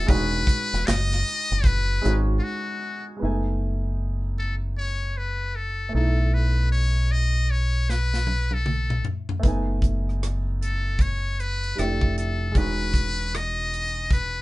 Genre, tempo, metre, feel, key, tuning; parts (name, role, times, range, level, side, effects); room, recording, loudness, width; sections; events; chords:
R&B, neo-soul; 77 BPM; 4/4; swing 62% on 16ths; F# dorian; A4 = 439 Hz
trumpet with metal mute; melody; 0.0-14.4 s; E#4 to D#5; -28 LUFS; left 2 dB
warm upright piano; accompaniment; 0.0-14.4 s; G3 to G#5; -31 LUFS; right 2 dB
deep dub fingered electric bass; bass; 0.0-14.4 s; E1 to B1; -24 LUFS; equal
tight funk drum kit; drums; 0.1-2.3, 7.9-14.3 s; handclaps, hi-hat, kick drum, rim click, snare drum, toms; -23 LUFS; equal
light reverb; band playing live in one room, nothing above 11.0 kHz; -22 LUFS; side -19 dB against mid
0.0-3.2 A section; 3.2-14.4 B section
break 2.4-3.2; drum fill 7.9-9.4
0.1 Emaj9; 3.2 F#m69; 5.9 B7sus4; 9.4 F#m69; 11.8 Fmaj9; 12.6 Emaj9